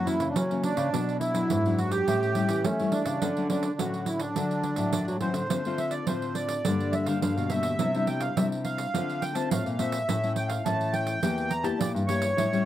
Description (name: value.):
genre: samba and choro.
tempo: 105 BPM.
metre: 4/4.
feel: straight.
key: D major, D minor from 5.5 s.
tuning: A4 = 439 Hz.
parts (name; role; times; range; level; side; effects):
accordion; melody; 0.0-12.7 s; C#4 to Bb5; -30 LUFS; right 2 dB; light tremolo tuning, slapback echo.
nylon-string guitar; accompaniment; 0.0-12.7 s; F#2 to G4; -30 LUFS; left 4 dB; none.
nylon-string guitar; bass; 0.0-12.7 s; E2 to A3; -31 LUFS; equal; none.
pandeiro; percussion; 0.1-12.7 s; none; -32 LUFS; right 6 dB; none.
room: little or no reverb.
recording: recorded outdoors, with no room sound.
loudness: -25 LUFS.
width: side -12 dB against mid.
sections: 0.0-5.5 A section; 5.5-12.7 B section.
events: none.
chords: 0.0 F#7; 0.9 Bm7; 2.1 A7; 3.2 Dmaj7; 5.5 Dm7; 6.7 Gm; 7.8 Cadd9; 8.9 Dm7; 10.1 A; 11.2 Edim.